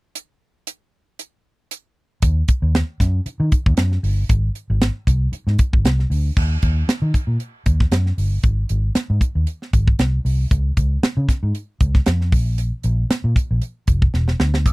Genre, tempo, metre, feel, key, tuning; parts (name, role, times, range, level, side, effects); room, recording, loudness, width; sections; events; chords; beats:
polished 1980s jazz-funk pop; 116 BPM; 4/4; swing 54% on 16ths; Eb minor; A4 = 438 Hz
tight funk drum kit; drums; 0.2-14.7 s; crash cymbal, hi-hat, kick drum, snare drum; -18 LUFS; equal
vintage muted fingered electric bass; bass; 2.2-14.7 s; E1 to Eb3; -18 LUFS; equal
little or no reverb; dry, close 1970s-style studio recording; -16 LUFS; side -23 dB against mid
0.2-2.2 A section; 2.2-6.4 B section; 6.4-14.7 C section
drum fill 14.1-14.7
| 0.15 0.67 1.19 1.71 | 2.23 2.74 3.26 3.78 | 4.30 4.82 5.33 5.85 | 6.37 6.89 7.41 7.92 | 8.44 8.96 9.48 10.00 | 10.52 11.03 11.55 12.07 | 12.59 13.11 13.62 14.14 | 14.66